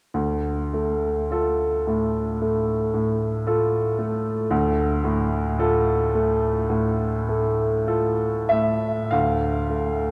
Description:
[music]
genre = classical, romantic nocturne for solo piano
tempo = 45-58 BPM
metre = 4/4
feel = rubato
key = D minor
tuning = A4 = 440 Hz
[part]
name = clear upright piano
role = solo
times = 0.1-10.1 s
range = D2 to F5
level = -23 LUFS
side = equal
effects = none
[sound]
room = wet cathedral reverb, RT60 6.2 s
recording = recorded in a church or concert hall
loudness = -23 LUFS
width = mono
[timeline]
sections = 0.2-9.1 A section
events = none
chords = 0.2 Dm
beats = | 0.15 1.32 2.42 3.48 | 4.51 5.59 6.71 7.88 | 9.13

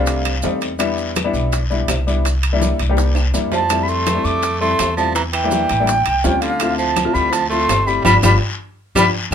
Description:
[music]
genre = Afro-Cuban jazz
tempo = 165 BPM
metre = 4/4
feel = straight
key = C major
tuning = A4 = 441 Hz
[part]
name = mellow silver concert flute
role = melody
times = 0.0-0.6, 3.5-9.1 s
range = F5 to D6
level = -18 LUFS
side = equal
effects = none
[part]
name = edgy tenor saxophone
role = second line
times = 0.0-0.6, 3.5-9.0 s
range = C3 to A3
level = -23 LUFS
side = right 4 dB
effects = none
[part]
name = warm upright piano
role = accompaniment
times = 0.0-9.3 s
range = G3 to G4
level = -22 LUFS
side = left 4 dB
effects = none
[part]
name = upright bass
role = bass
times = 0.0-9.3 s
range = G1 to F2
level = -20 LUFS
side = equal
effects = none
[part]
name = bongos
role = percussion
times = 0.1-9.3 s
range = none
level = -29 LUFS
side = left 6 dB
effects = none
[part]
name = congas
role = percussion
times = 0.1-9.3 s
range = none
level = -26 LUFS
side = left 2 dB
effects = none
[part]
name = guiro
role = percussion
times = 0.1-9.0 s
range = none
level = -31 LUFS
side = left 5 dB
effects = none
[part]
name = maracas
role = percussion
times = 0.1-9.3 s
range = none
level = -29 LUFS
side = right 5 dB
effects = none
[part]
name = timbales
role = percussion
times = 0.1-9.0 s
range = none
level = -26 LUFS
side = right 8 dB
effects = none
[part]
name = claves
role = percussion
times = 0.3-9.3 s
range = none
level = -30 LUFS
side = left 1 dB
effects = none
[sound]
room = moderate club reverb, RT60 0.6 s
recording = minimal, uncompressed stereo recording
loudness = -15 LUFS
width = side -8 dB against mid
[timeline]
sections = 0.0-9.3 A section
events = drum fill 3.0-3.7, 8.4-9.3; band accent 8.1-9.3; upright piano fill 8.8-9.3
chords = 0.0 F9; 0.8 Em7; 2.3 C7; 3.7 Fmaj9; 5.2 Em7b5; 5.9 A7alt; 6.6 Dm9; 8.1 G7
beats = 0.08 0.44 | 0.80 1.17 1.53 1.89 | 2.26 2.62 2.98 3.35 | 3.71 4.07 4.43 4.80 | 5.16 5.52 5.88 6.25 | 6.61 6.97 7.33 7.70 | 8.06 8.42 8.78 9.14

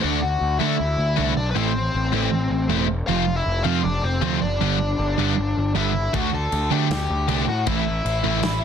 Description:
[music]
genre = punk rock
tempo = 157 BPM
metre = 4/4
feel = straight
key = unclear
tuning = A4 = 440 Hz
[part]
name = smooth overdriven lead guitar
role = melody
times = 0.0-8.6 s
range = C4 to A5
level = -25 LUFS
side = left 3 dB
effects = none
[part]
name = distorted electric guitar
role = riff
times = 0.0-8.4 s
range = G2 to F#4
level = -26 LUFS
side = left 18 dB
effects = overdrive
[part]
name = sludgy distorted guitar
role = riff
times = 0.0-8.4 s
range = F2 to D4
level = -24 LUFS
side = right 12 dB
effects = overdrive
[part]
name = fuzz picked electric bass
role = bass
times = 0.0-8.6 s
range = E1 to D3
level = -24 LUFS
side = left 1 dB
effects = overdrive
[part]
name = loose indie drum kit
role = drums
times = 6.1-8.5 s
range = crash cymbal, kick drum, snare drum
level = -29 LUFS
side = left 2 dB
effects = soft clipping on kick
[sound]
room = light reverb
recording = dense, heavily limited modern master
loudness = -19 LUFS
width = side -8 dB against mid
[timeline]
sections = 0.0-8.6 A section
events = half time 0.0-8.6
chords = 0.0 D; 1.6 Am; 3.1 F; 4.6 G; 6.1 D; 7.7 Am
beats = | 0.03 0.41 0.79 1.17 | 1.55 1.94 2.32 2.70 | 3.08 3.46 3.85 4.23 | 4.61 4.99 5.38 5.76 | 6.14 6.52 6.91 7.29 | 7.67 8.05 8.43

